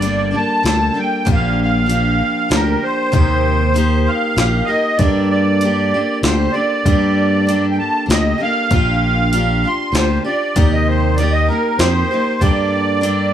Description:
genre	folk rock and heartland rock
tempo	97 BPM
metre	3/4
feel	straight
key	G minor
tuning	A4 = 440 Hz
part	musette accordion	melody	0.0-13.3 s	Bb4 to C6	-18 LUFS	right 2 dB	none
part	picked steel-string acoustic guitar	accompaniment	0.0-13.3 s	G2 to Bb4	-20 LUFS	left 3 dB	none
part	fingered electric bass	bass	0.0-13.3 s	G1 to G2	-17 LUFS	right 1 dB	none
part	jungle sampler-style drum kit	drums	0.0-13.2 s	hi-hat, kick drum, snare drum	-18 LUFS	equal	overdrive
room	light reverb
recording	none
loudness	-13 LUFS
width	side -10 dB against mid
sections	0.0-13.3 A section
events	none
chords	0.0 Gmadd9; 1.3 Bb6; 3.1 Eb6; 5.0 Gmadd9; 8.7 Bb6; 10.6 Eb6; 12.4 Gmadd9

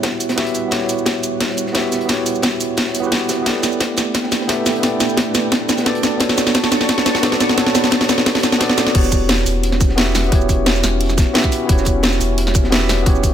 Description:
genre	liquid drum and bass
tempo	175 BPM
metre	4/4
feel	straight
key	E dorian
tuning	A4 = 441 Hz
part	bright tine electric piano	accompaniment	0.0-13.3 s	B3 to E5	-20 LUFS	equal	medium stereo tremolo, ping-pong delay
part	lush unison pad	sustained chords	0.0-13.3 s	G3 to C#6	-25 LUFS	equal	chorus
part	crunchy breakbeat drum kit	drums	0.0-13.3 s	hi-hat, snare drum	-26 LUFS	equal	none
part	electronic kick drum	drums	0.0-13.3 s	none	-17 LUFS	equal	high-pass filter on kick
part	garage drum kit	drums	0.0-13.3 s	crash cymbal, hi-hat, shaker, snare drum	-18 LUFS	equal	none
part	warm sub bass	bass	8.9-13.3 s	E1	-20 LUFS	equal	none
room	light reverb, digital ambience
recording	none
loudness	-14 LUFS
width	side -10 dB against mid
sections	0.0-8.9 A section; 8.9-13.3 B section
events	build-up 0.0-8.9; drum fill 0.0-8.9; filter sweep on analog synth pad 0.0-8.9; drop 8.9-13.3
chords	0.0 Em69; 3.5 A9sus4; 6.0 Bm9; 8.9 Em69

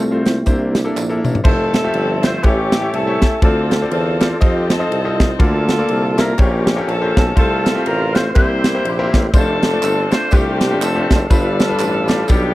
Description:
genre	uptempo gospel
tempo	122 BPM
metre	4/4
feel	swing 59% on 8ths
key	F major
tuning	A4 = 440 Hz
part	bright grand piano	accompaniment	0.0-12.5 s	G2 to E5	-22 LUFS	left 2 dB	none
part	mellow tonewheel organ	sustained chords	0.0-12.5 s	F3 to C6	-26 LUFS	right 1 dB	fast rotary speaker, chorus vibrato
part	clear tuba	bass	0.0-12.5 s	F1 to F2	-20 LUFS	equal	none
part	crisp fusion drum kit	drums	0.3-12.4 s	crash cymbal, hi-hat, kick drum, ride cymbal, snare drum, toms	-15 LUFS	equal	none
part	tambourine and handclaps	percussion	0.3-1.3, 9.3-12.4 s	none	-31 LUFS	right 7 dB	none
part	mellow saxophone section	melody	1.5-12.5 s	B3 to C5	-20 LUFS	left 1 dB	none
room	little or no reverb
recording	dry, close 1970s-style studio recording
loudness	-13 LUFS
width	side -17 dB against mid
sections	0.0-1.5 A section; 1.5-12.5 B section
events	tonewheel organ solo 0.0-1.5; drum fill 1.0-1.5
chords	0.5 C9; 1.5 Fmaj7; 2.4 A7; 3.4 Dm7; 4.4 F7; 5.4 Bbmaj7/D; 6.4 Bbm6; 7.4 F/C; 8.3 C7; 9.3 F6; 11.3 G7

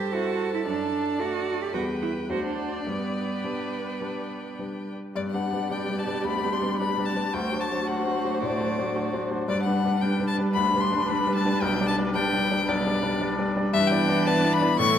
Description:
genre	quick classical-period movement for piano quintet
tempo	112 BPM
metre	4/4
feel	rubato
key	G major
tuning	A4 = 441 Hz
part	rich violin	melody	0.0-15.0 s	D5 to C#6	-28 LUFS	left 6 dB	none
part	dark violin	second line	0.0-15.0 s	A4 to D5	-35 LUFS	left 2 dB	none
part	rich cello	second line	0.0-15.0 s	E3 to G4	-32 LUFS	right 5 dB	none
part	clear baby grand piano	accompaniment	0.0-15.0 s	B1 to D5	-27 LUFS	left 1 dB	none
part	warm viola	accompaniment	0.0-15.0 s	D4 to C5	-33 LUFS	right 5 dB	none
room	wet recital hall reverb, RT60 1.7 s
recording	none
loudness	-23 LUFS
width	side -9 dB against mid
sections	0.0-5.2 A section; 5.2-15.0 B section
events	none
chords	0.0 Am7/G; 0.7 D/F#; 1.7 Em; 2.3 D7; 2.9 G; 7.3 D7; 9.5 G; 11.6 G/B; 13.7 Em7/G

